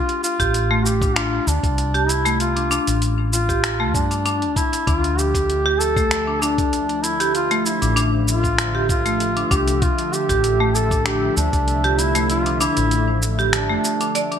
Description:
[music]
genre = organic downtempo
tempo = 97 BPM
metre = 4/4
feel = swing 53% on 16ths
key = D minor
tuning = A4 = 438 Hz
[part]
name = warm duduk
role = melody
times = 0.0-14.4 s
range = D4 to A4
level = -22 LUFS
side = equal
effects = ping-pong delay
[part]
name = dusty soul sampler-style drum kit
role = drums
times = 0.1-14.4 s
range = finger snaps, hi-hat, shaker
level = -25 LUFS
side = right 1 dB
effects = small room ambience, gated reverb
[part]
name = marimba with hard mallets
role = arpeggios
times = 0.4-14.4 s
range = A3 to D5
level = -23 LUFS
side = equal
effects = ping-pong delay
[part]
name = woody fretless electric bass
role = bass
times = 0.4-13.8 s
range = A1 to G2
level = -23 LUFS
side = equal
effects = wide subtle chorus, sidechain pumping
[part]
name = electronic kick drum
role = drums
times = 0.4-11.6 s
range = none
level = -23 LUFS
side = equal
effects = small room ambience
[part]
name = warm analog pad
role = sustained chords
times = 4.9-14.4 s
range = D3 to E5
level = -28 LUFS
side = equal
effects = chorus, sidechain pumping
[sound]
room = moderate plate reverb, RT60 1.9 s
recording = bright 1980s-style digital production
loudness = -17 LUFS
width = side -8 dB against mid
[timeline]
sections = 0.0-14.4 A section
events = kick drops out 12.3-14.4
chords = 0.0 Dm

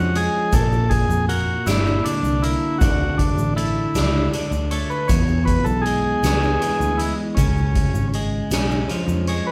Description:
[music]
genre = psychedelic rock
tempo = 53 BPM (dotted quarters)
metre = 6/8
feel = straight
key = E mixolydian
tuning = A4 = 440 Hz
[part]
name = combo organ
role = melody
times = 0.0-9.5 s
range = C#4 to C#5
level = -26 LUFS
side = equal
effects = none
[part]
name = twelve-string electric guitar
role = riff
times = 0.0-9.5 s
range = E2 to D4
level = -27 LUFS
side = equal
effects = none
[part]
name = picked electric bass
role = bass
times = 0.0-9.4 s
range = G1 to E#2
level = -25 LUFS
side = equal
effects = none
[part]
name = soft-mallet drum kit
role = drums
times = 0.2-9.4 s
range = hi-hat, kick drum, snare drum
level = -25 LUFS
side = equal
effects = none
[part]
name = egg shaker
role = percussion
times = 0.5-9.3 s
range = none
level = -43 LUFS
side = equal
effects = none
[sound]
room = wet large studio reverb, RT60 0.7 s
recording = band playing live in one room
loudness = -20 LUFS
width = mono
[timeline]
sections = 0.0-9.5 A section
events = transistor combo organ solo 0.0-9.5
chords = 0.0 C#; 0.5 A#; 2.8 D5; 5.1 E; 7.4 C#

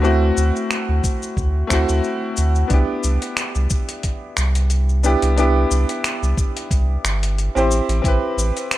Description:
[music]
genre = sunset chillout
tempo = 90 BPM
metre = 4/4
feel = swing 55% on 16ths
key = C lydian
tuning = A4 = 443 Hz
[part]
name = bright concert grand piano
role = accompaniment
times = 0.0-8.8 s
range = A3 to C5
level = -22 LUFS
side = equal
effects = auto-pan, ping-pong delay
[part]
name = warm sub bass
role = bass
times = 0.0-8.5 s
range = G1 to D2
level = -18 LUFS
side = equal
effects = none
[part]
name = dusty soul sampler-style drum kit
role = drums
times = 0.0-8.8 s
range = finger snaps, hi-hat, shaker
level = -25 LUFS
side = left 1 dB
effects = none
[part]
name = electronic kick drum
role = drums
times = 1.0-8.2 s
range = none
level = -20 LUFS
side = equal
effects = none
[sound]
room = light reverb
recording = rough home demo mix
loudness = -17 LUFS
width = side -15 dB against mid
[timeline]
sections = 0.0-2.7 A section; 2.7-8.8 B section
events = none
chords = 0.0 D9; 2.7 Cmaj7; 7.7 Am9

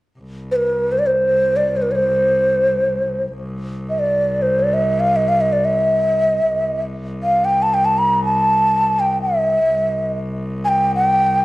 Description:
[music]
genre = arabic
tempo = free time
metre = none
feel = none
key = C maqam rast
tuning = A4 = 440 Hz
[part]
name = clear cello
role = drone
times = 0.2-11.4 s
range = C2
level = -25 LUFS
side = left 1 dB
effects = none
[part]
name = breathy mellow ney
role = melody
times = 0.5-11.4 s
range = Bb4+47c to Bb5+48c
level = -15 LUFS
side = equal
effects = none
[sound]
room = moderate recital hall reverb, RT60 1.6 s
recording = worn, warbling old tape, cassette tape, warbly pitch drift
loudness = -15 LUFS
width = side -18 dB against mid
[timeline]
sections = 0.2-11.4 A section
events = none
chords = none

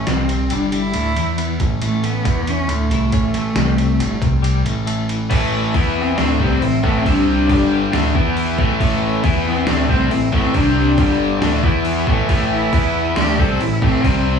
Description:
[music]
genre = quiet-loud alternative rock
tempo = 138 BPM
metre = 4/4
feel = straight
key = unclear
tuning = A4 = 440 Hz
[part]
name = bright cello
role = melody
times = 0.0-14.2 s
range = A3 to A4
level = -21 LUFS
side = equal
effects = none
[part]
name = twelve-string electric guitar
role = arpeggios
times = 0.0-12.3 s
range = A2 to G4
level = -24 LUFS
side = left 5 dB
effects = tremolo
[part]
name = growling picked electric bass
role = bass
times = 0.0-14.4 s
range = G1 to E2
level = -21 LUFS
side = right 1 dB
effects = overdrive
[part]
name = trip hop sampler-style drum kit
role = drums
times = 0.1-14.1 s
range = crash cymbal, kick drum, ride cymbal, snare drum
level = -21 LUFS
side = right 1 dB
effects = none
[part]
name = cranked stack guitar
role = riff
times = 5.3-14.4 s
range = G2 to E4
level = -19 LUFS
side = left 2 dB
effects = overdrive
[sound]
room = moderate large studio reverb, RT60 1.1 s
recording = band playing live in one room, small room reverb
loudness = -15 LUFS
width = side -6 dB against mid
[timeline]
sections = 0.0-5.3 A section; 5.3-14.4 B section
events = half time 0.0-5.3; cello solo 5.3-14.4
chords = 0.1 N.C.; 0.5 G5; 0.9 A5; 1.2 E5; 1.6 Asus2; 2.3 E5; 2.7 A; 3.6 Am/C; 4.0 Gsus2; 4.2 C5; 4.7 A5; 5.8 E5; 6.2 A5; 7.1 C5; 7.5 G5; 7.9 D5; 8.2 E5; 8.6 A; 9.2 E5; 9.7 A5; 10.6 C5; 11.0 G5; 11.4 D5; 11.6 E5; 12.1 A5; 12.7 E5; 13.2 A5

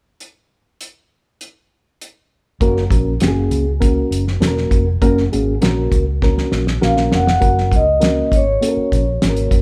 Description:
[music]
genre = uptempo 1960s-style soul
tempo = 100 BPM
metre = 4/4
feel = straight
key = F# major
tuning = A4 = 440 Hz
[part]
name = cloth-damped thuddy drum kit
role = drums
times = 0.2-9.6 s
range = hi-hat, kick drum, snare drum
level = -20 LUFS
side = equal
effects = none
[part]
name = mellow reed electric piano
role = accompaniment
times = 2.6-9.6 s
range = A#3 to A#4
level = -22 LUFS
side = equal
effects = phaser
[part]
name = vintage muted fingered electric bass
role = bass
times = 2.6-9.6 s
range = E1 to C#2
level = -22 LUFS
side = equal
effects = none
[part]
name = vibraphone with soft mallets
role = melody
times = 6.8-9.5 s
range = C#5 to F#5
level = -20 LUFS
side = equal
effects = none
[sound]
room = moderate large studio reverb, RT60 1.3 s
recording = band playing live in one room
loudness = -16 LUFS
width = mono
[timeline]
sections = 0.2-2.6 A section; 2.6-7.4 B section; 7.4-9.6 C section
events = drum fill 6.2-7.4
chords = 0.2 N.C.; 2.6 F#

